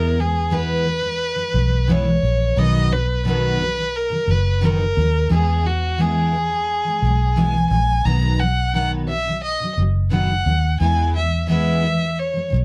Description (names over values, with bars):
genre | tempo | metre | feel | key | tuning
pop | 87 BPM | 4/4 | straight | unclear | A4 = 440 Hz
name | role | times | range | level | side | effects
warm violin | melody | 0.0-12.5 s | F#4 to A#5 | -24 LUFS | equal | none
picked steel-string acoustic guitar | accompaniment | 0.0-12.6 s | B2 to B4 | -25 LUFS | equal | double-tracked
vintage muted fingered electric bass | bass | 0.0-12.6 s | F#1 to E2 | -23 LUFS | equal | none
room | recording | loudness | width
light reverb | dark, warm production | -19 LUFS | mono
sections
0.0-12.6 A section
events
none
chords
0.0 E; 2.6 B; 5.3 E; 8.1 B; 10.8 E